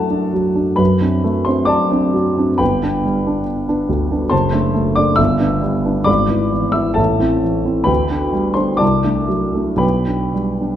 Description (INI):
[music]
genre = classical, romantic character piece for solo piano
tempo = 55-71 BPM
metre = 2/4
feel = rubato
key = G major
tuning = A4 = 443 Hz
[part]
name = clear concert grand piano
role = solo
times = 0.0-10.8 s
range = F#1 to E6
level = -14 LUFS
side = equal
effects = none
[sound]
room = moderate recital hall reverb, RT60 1.4 s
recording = dark, warm production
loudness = -14 LUFS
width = side -10 dB against mid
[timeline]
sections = 0.0-10.8 A section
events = none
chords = 0.0 D/F#; 0.8 D7/F#; 2.6 G; 4.3 D7/F#; 5.2 G; 6.1 E7/G#; 7.0 Am; 7.9 G/D; 8.8 D7/C; 9.8 G/B